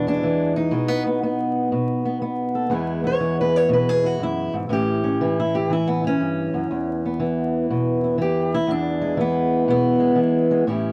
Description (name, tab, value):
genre	acoustic country blues, solo or duo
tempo	120 BPM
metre	4/4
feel	swing 66% on 8ths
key	E major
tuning	A4 = 439 Hz
part	fingerpicked steel-string acoustic guitar	solo	0.0-10.9 s	E2 to C#5	-21 LUFS	equal	none
room	light reverb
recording	dry, close 1970s-style studio recording, vinyl crackle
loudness	-21 LUFS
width	mono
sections	0.0-2.7 A section; 2.7-10.9 B section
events	steel-string acoustic guitar solo 2.7-10.9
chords	0.0 E; 0.7 B; 2.7 E; 4.7 A7; 6.7 E7